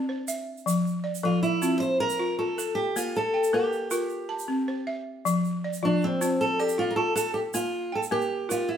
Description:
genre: west african traditional, West African string and xylophone music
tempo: 105 BPM (dotted quarters)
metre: 12/8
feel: straight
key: F major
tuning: A4 = 444 Hz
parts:
  - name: fingerpicked steel-string acoustic guitar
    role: melody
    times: 0.0-8.8 s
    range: C4 to C5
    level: -26 LUFS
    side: right 1 dB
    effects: none
  - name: balafon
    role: arpeggios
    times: 0.0-8.8 s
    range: F3 to A5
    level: -28 LUFS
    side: left 1 dB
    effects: none
  - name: egg shaker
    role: percussion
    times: 0.3-8.6 s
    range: none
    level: -37 LUFS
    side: right 5 dB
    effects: none
room: moderate stone room reverb, RT60 1.0 s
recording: band playing live in one room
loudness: -24 LUFS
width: side -8 dB against mid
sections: 0.0-8.8 A section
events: none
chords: 0.0 C; 0.7 F; 3.0 Bb5; 4.1 C; 5.2 F; 7.5 Bb5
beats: 0.09 | 0.67 1.24 1.81 2.38 | 2.96 3.53 4.10 4.67 | 5.25 5.82 6.39 6.97 | 7.54 8.11 8.68

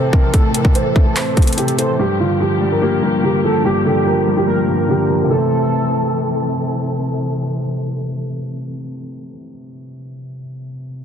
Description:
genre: hip hop, trap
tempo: 145 BPM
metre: 4/4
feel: half-time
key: A phrygian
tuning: A4 = 440 Hz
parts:
  - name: felt-muted upright piano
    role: melody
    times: 0.0-6.5 s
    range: F4 to C5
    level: -20 LUFS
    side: right 2 dB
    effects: low-pass filter, ping-pong delay
  - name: warm velvety synth lead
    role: second line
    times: 0.0-6.5 s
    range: G4 to C5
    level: -24 LUFS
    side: right 3 dB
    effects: chorus, ping-pong delay
  - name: dark baby grand piano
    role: accompaniment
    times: 0.0-11.0 s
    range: G2 to C4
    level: -19 LUFS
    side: left 2 dB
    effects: low-pass filter
  - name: dark chamber string section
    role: sustained chords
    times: 0.0-9.4 s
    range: E3 to A4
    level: -25 LUFS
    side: equal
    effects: low-pass filter
  - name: trap drum kit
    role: drums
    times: 0.1-1.9 s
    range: handclaps, hi-hat, kick drum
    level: -13 LUFS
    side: equal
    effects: overdrive
room: light reverb, small room reverb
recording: dense, heavily limited modern master, lossy compression artefacts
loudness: -14 LUFS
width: side -8 dB against mid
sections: 0.0-5.3 A section; 5.3-8.6 B section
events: filter sweep 0.0-5.3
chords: 0.0 Am; 2.0 Gm7; 5.3 Am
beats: | 0.34 0.75 1.16 1.58 | 1.99 2.40 2.82 3.23 | 3.65 4.06 4.47 4.89 | 5.30 5.72 6.13 6.54 | 6.96 7.37 7.79 8.20

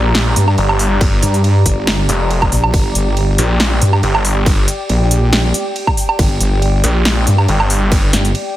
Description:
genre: heavy wobble dubstep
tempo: 139 BPM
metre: 4/4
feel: swing 53% on 16ths, half-time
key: G minor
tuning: A4 = 439 Hz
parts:
  - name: snarling distorted saw bass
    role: bass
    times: 0.0-8.1 s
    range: F1 to Bb1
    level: -14 LUFS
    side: equal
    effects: overdrive
  - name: airy breathy pad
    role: texture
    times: 0.0-8.6 s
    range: G4 to Bb5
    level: -21 LUFS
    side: equal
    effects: chorus, sidechain pumping
  - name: big-room dance drum kit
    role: drums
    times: 0.1-8.4 s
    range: hi-hat, ride cymbal, snare drum, woodblock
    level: -18 LUFS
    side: right 1 dB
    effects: none
  - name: wobble bass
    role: bass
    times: 0.4-8.3 s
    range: G1 to G2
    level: -13 LUFS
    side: equal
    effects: chorus, overdrive
  - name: electronic kick drum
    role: drums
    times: 1.0-8.0 s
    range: none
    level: -15 LUFS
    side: equal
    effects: none
room: little or no reverb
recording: none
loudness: -11 LUFS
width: side -14 dB against mid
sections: 0.0-8.6 A section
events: none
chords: 0.0 Gm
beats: 0.15 0.58 | 1.01 1.44 1.87 2.31 | 2.74 3.17 3.60 4.03 | 4.46 4.89 5.33 5.76 | 6.19 6.62 7.05 7.49 | 7.92 8.35

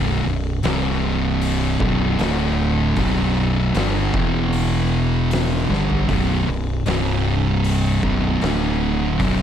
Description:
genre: stoner and doom metal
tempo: 77 BPM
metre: 4/4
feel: straight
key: B minor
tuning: A4 = 443 Hz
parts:
  - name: thick fuzz guitar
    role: riff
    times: 0.0-9.4 s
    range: B1 to G3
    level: -22 LUFS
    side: left 7 dB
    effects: distortion
  - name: thick fuzz guitar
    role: riff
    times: 0.0-9.4 s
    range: B1 to G3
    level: -22 LUFS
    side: right 7 dB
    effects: distortion
  - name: growling fingered electric bass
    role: bass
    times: 0.0-9.4 s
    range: B0 to G1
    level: -24 LUFS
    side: equal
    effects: overdrive
  - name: oversized low-tuned drum kit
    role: drums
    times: 0.6-9.4 s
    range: hi-hat, kick drum, snare drum, toms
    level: -26 LUFS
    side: equal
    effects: none
room: light reverb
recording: none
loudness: -17 LUFS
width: side -9 dB against mid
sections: 0.0-9.4 A section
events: drum fill 5.7-6.1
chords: 0.0 B5; 0.6 C5; 1.8 B5; 2.2 D5; 3.0 Bm; 4.1 E5; 5.7 Bm; 6.9 C5; 8.0 B5; 8.4 D5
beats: 0.64 1.42 2.19 | 2.97 3.75 4.53 5.31 | 6.08 6.86 7.64 8.42 | 9.20

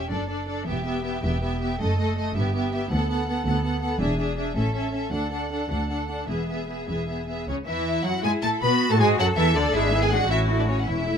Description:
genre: quick classical-period movement for string orchestra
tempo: 106 BPM (dotted quarters)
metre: 6/8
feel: rubato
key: A major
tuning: A4 = 440 Hz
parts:
  - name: rich studio violin section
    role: melody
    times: 0.0-11.2 s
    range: C#5 to B5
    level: -30 LUFS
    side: left 3 dB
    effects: none
  - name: rich studio violin section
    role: second line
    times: 0.0-11.2 s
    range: C#4 to B4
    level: -30 LUFS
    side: equal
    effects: none
  - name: rich studio viola section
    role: accompaniment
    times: 0.0-11.2 s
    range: C#3 to E4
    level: -28 LUFS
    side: right 2 dB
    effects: none
  - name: clear studio cello section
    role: bass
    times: 0.1-11.2 s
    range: D2 to A4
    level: -31 LUFS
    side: left 2 dB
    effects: none
  - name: warm studio double bass section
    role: bass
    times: 0.1-11.2 s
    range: E1 to B2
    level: -27 LUFS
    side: right 1 dB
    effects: none
room: little or no reverb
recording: close, detailed microphones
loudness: -22 LUFS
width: side -7 dB against mid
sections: 0.0-7.5 A section; 7.5-11.2 B section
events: none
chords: 0.1 D/F#; 0.7 Em; 1.8 D#dim/F#; 2.4 Em/G; 2.9 Bm7/D; 4.0 E7; 4.6 A; 5.1 D; 6.3 E; 7.5 A5; 8.6 D; 9.7 E7/G#; 10.3 A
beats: 0.11 | 0.67 1.24 | 1.80 2.37 | 2.92 3.47 | 4.01 4.56 | 5.13 5.70 | 6.29 6.88 | 7.47 8.04 | 8.61 9.18 | 9.74 10.30 | 10.87

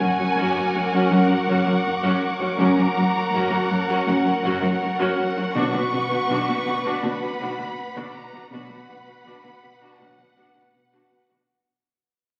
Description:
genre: cinematic, suspense film score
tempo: 81 BPM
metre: 4/4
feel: straight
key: unclear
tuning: A4 = 440 Hz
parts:
  - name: warm symphonic violin section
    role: melody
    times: 0.0-10.7 s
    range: F#5 to C#6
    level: -31 LUFS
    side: equal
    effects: none
  - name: rich symphonic violin section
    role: second line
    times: 0.0-11.2 s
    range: A#4 to F#5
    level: -29 LUFS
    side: equal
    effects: none
  - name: rich symphonic viola section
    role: accompaniment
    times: 0.0-11.4 s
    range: C#4 to F#4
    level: -29 LUFS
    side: equal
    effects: none
  - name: rich symphonic cello section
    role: riff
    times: 0.0-11.3 s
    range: F#2 to B3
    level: -30 LUFS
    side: equal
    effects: none
  - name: rich symphonic cello section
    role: bass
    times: 0.0-11.4 s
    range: F#2 to B2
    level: -29 LUFS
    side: equal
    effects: none
  - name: rich symphonic double bass section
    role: bass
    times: 0.0-10.4 s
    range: F#1 to B1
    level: -42 LUFS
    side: equal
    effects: none
  - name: warm symphonic violin section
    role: texture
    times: 0.0-5.1 s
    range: C#6 to D6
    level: -34 LUFS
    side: equal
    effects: none
  - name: mellow French horn section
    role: sustained chords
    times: 1.1-10.3 s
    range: F#3 to D4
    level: -29 LUFS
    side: equal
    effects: none
room: wet scoring stage reverb, RT60 1.5 s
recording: very old 78 rpm record, vinyl crackle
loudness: -22 LUFS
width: mono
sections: 0.0-11.5 A section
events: fade-out 0.0-11.5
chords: 0.0 F#; 5.5 Bm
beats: 0.36 1.10 1.85 | 2.59 3.33 4.07 4.81 | 5.55 6.29 7.03 7.77 | 8.51 9.25 9.99 10.73

